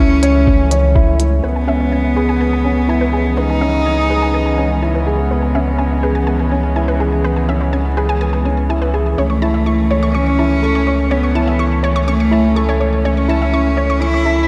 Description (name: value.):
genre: piano and strings electronica.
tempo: 124 BPM.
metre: 4/4.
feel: straight.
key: C# minor.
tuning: A4 = 440 Hz.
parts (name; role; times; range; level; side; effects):
warm cello; melody; 0.0-5.1, 9.2-14.5 s; A3 to E4; -20 LUFS; equal; tape echo.
dark studio string section; sustained chords; 0.0-14.5 s; C#3 to C#4; -25 LUFS; equal; none.
felt-muted upright piano; riff; 0.0-14.5 s; B3 to C#5; -22 LUFS; equal; tape echo.
warm sub bass; bass; 0.0-14.5 s; C#2; -20 LUFS; equal; sidechain pumping.
electronic hi-hat; drums; 0.2-1.3 s; none; -27 LUFS; equal; none.
electronic kick drum; drums; 0.5-1.1 s; none; -16 LUFS; equal; none.
analog pluck; arpeggios; 1.4-14.4 s; B4 to C#6; -27 LUFS; equal; chorus, sidechain pumping, tape echo.
room: wet lush hall reverb, RT60 1.9 s, small room ambience.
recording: dreamy mix soaked in reverb.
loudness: -15 LUFS.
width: mono.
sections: 0.0-1.4 A section; 1.4-14.5 B section.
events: filter sweep on synth arpeggio sound 1.4-14.5.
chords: 0.0 A/C#; 1.4 C#m7; 9.2 A/C#.